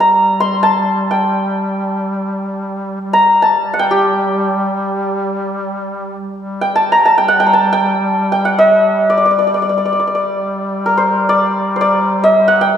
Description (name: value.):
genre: Persian modal ensemble.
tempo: free time.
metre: none.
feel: none.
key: G avaz esfahan.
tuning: A4 = 440 Hz.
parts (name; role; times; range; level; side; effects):
santur; melody; 0.0-12.8 s; G4 to C6; -12 LUFS; equal; none.
warm duduk; drone; 0.0-12.8 s; G3; -20 LUFS; equal; none.
room: wet recital hall reverb, RT60 1.5 s.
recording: recorded in a church or concert hall.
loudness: -12 LUFS.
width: side -9 dB against mid.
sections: 0.0-6.4 A section; 6.4-12.8 A section.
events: none.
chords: none.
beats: free time.